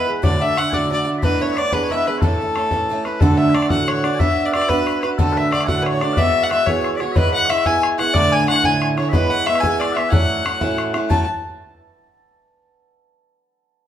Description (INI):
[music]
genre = celtic folk, Celtic jig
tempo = 122 BPM (dotted quarters)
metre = 6/8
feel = straight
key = A major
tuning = A4 = 440 Hz
[part]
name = rich fiddle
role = melody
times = 0.0-11.3 s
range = A4 to A5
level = -20 LUFS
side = left 3 dB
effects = none
[part]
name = cimbalom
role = second line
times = 0.0-12.3 s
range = A4 to A5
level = -27 LUFS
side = right 3 dB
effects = none
[part]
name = mellow small bagpipes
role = second line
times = 0.0-11.3 s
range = A4 to Bb5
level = -28 LUFS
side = left 6 dB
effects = none
[part]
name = picked acoustic archtop guitar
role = accompaniment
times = 0.0-11.3 s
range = D2 to B4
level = -21 LUFS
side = right 3 dB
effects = none
[part]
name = bodhran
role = percussion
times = 0.2-11.3 s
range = none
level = -21 LUFS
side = left 1 dB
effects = none
[sound]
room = wet large studio reverb, RT60 1.2 s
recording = band playing live in one room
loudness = -16 LUFS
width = side -10 dB against mid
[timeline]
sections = 0.0-3.2 A section; 3.2-11.1 B section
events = none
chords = 0.2 D; 1.2 E7sus4; 1.7 E7; 2.2 A; 3.2 D; 4.2 Bm; 5.2 D; 6.2 Eadd9; 7.2 E; 8.1 Dsus2; 9.1 E; 10.1 A6